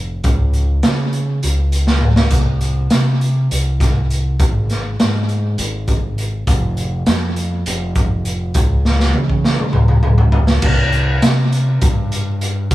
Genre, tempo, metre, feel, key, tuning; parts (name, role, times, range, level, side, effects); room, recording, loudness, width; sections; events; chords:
psychedelic rock; 202 BPM (eighths); 7/8; straight; A4 = 442 Hz
growling fingered electric bass; bass; 0.0-12.7 s; F1 to Db3; -17 LUFS; equal; overdrive
raw garage drum kit; drums; 0.2-12.7 s; crash cymbal, hi-hat, kick drum, snare drum, splash cymbal, toms; -16 LUFS; equal; tape echo
little or no reverb; echo-heavy mix, small room ambience; -14 LUFS; side -16 dB against mid
0.0-10.6 A section; 10.6-12.7 B section
drum fill 1.9-2.3, 8.9-10.6